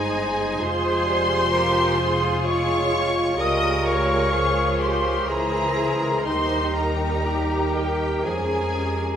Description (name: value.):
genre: classical, slow romantic movement for symphony orchestra.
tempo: 58-66 BPM.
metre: 3/4.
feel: rubato.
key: unclear.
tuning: A4 = 440 Hz.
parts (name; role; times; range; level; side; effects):
clear studio violin section; melody; 0.0-9.2 s; G5 to Eb6; -28 LUFS; equal; none.
hollow flute section; second line; 0.0-9.2 s; G5 to Eb6; -28 LUFS; left 3 dB; none.
mellow cor anglais; second line; 0.0-9.2 s; Ab4 to Db5; -30 LUFS; right 2 dB; none.
rich studio violin section; second line; 0.0-9.2 s; Db4 to Ab4; -32 LUFS; left 1 dB; none.
warm clarinet; second line; 0.0-9.2 s; Eb4 to Bb4; -30 LUFS; equal; none.
mellow bassoon; accompaniment; 0.0-9.0 s; Eb3 to Ab3; -30 LUFS; right 3 dB; none.
rich studio viola section; accompaniment; 0.0-9.2 s; G4 to Eb5; -29 LUFS; equal; none.
mellow French horn section; sustained chords; 0.0-9.2 s; G3 to F4; -29 LUFS; left 1 dB; none.
rich studio cello section; bass; 0.0-9.2 s; Eb4 to Bb4; -30 LUFS; right 1 dB; none.
rich studio double bass section; bass; 0.0-9.2 s; F1 to F2; -28 LUFS; equal; none.
room: moderate scoring stage reverb, RT60 1.5 s.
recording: minimal, uncompressed stereo recording, vinyl crackle.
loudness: -19 LUFS.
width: side -8 dB against mid.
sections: 0.0-9.2 A section.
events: none.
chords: 0.0 Ab; 0.6 Fm; 3.4 Db; 5.3 Bbm7b5/Db; 6.3 Eb; 8.3 Db/F.